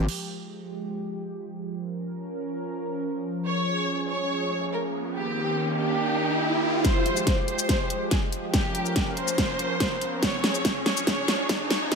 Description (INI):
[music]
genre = heavy wobble dubstep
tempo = 142 BPM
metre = 4/4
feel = half-time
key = F minor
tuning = A4 = 441 Hz
[part]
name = supersaw pad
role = sustained chords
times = 0.0-12.0 s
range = Eb3 to Bb4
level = -30 LUFS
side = right 1 dB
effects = sidechain pumping, low-pass filter
[part]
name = dubstep drum kit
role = drums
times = 0.1-0.2, 6.8-12.0 s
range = crash cymbal, hi-hat, shaker, snare drum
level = -27 LUFS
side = equal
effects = none
[part]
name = warm studio violin section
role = melody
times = 3.5-12.0 s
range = G4 to Db5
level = -29 LUFS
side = right 1 dB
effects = ping-pong delay
[part]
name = riser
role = sound effects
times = 4.5-12.0 s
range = none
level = -31 LUFS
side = right 1 dB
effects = none
[part]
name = electronic kick drum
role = drums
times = 6.8-12.0 s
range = none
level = -28 LUFS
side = equal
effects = none
[sound]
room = moderate lush hall reverb, RT60 1.8 s, digital ambience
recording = high-pass filter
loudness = -24 LUFS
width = side -5 dB against mid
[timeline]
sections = 0.1-6.8 A section; 6.8-12.0 B section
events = filter sweep on supersaw synth 0.1-6.8; riser 4.5-6.8, 6.8-12.0; build-up 6.8-12.0; drum fill 6.8-12.0; filter sweep 6.8-12.0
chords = 0.1 Fmadd9; 1.8 Bbm; 3.5 Db; 5.2 Eb; 6.8 Fmadd9; 8.5 Bbm; 10.2 Db